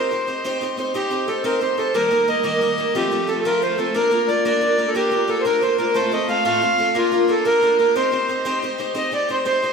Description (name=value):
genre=celtic folk, Celtic jig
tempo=120 BPM (dotted quarters)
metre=6/8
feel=straight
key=C dorian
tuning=A4 = 440 Hz
part: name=accordion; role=melody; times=0.0-9.7 s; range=F4 to F5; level=-19 LUFS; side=equal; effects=none
part: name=picked twelve-string acoustic guitar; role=accompaniment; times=0.0-9.7 s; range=A2 to C5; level=-22 LUFS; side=equal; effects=none
room=wet recital hall reverb, RT60 1.6 s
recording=recorded in a church or concert hall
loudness=-17 LUFS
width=side -5 dB against mid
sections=0.9-9.0 A section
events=none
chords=0.0 Cm; 1.9 Eb; 2.9 F; 3.9 Bb; 6.0 F/A; 7.0 Bb; 8.0 Cm